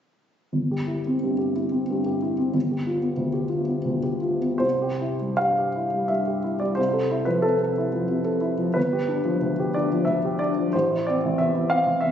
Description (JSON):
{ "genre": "classical, romantic character piece for solo piano", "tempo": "75-94 BPM", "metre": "3/4", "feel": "rubato", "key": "C major", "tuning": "A4 = 440 Hz", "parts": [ { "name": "warm baby grand piano", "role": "solo", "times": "0.5-12.1 s", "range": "G1 to F5", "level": "-21 LUFS", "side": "equal", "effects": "none" } ], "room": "moderate recital hall reverb, RT60 1.4 s", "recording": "recorded on a phone in the room, studio reverb, compression, nothing above 7.8 kHz", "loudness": "-22 LUFS", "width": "side -9 dB against mid", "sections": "0.5-4.6 A section; 4.6-12.1 B section", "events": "none", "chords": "0.5 C/G; 2.5 G7; 4.6 C; 6.8 Fmaj7/C; 8.8 G7; 10.7 Am" }